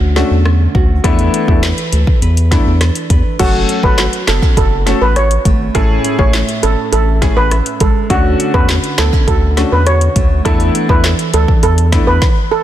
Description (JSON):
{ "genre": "dancehall", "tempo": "102 BPM", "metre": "4/4", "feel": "straight", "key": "F# minor", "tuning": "A4 = 440 Hz", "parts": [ { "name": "nylon-string guitar", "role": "arpeggios", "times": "0.0-12.6 s", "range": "A2 to B4", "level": "-21 LUFS", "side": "right 4 dB", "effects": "ping-pong delay" }, { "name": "round analog bass", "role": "bass", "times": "0.0-12.2 s", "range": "F#1 to E2", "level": "-14 LUFS", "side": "equal", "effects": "none" }, { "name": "clear concert grand piano", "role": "accompaniment", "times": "0.2-12.1 s", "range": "A3 to A4", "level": "-19 LUFS", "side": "left 4 dB", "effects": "none" }, { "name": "afro-pop drum kit", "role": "drums", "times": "0.2-12.4 s", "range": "crash cymbal, handclaps, hi-hat, kick drum, rim click, snare drum", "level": "-15 LUFS", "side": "equal", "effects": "soft clipping on snare" }, { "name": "steel pan", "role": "melody", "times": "3.4-12.6 s", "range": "F#4 to C#5", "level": "-16 LUFS", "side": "right 3 dB", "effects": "ping-pong delay" } ], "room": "small room ambience", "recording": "dense, heavily limited modern master", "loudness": "-10 LUFS", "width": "side -12 dB against mid", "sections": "0.0-3.4 A section; 3.4-12.6 B section", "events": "stop 12.2-12.6", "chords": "0.0 Dmaj7; 1.0 E7sus4; 3.4 F#m; 5.7 Amaj7; 8.1 Dmaj7; 10.5 E7sus4" }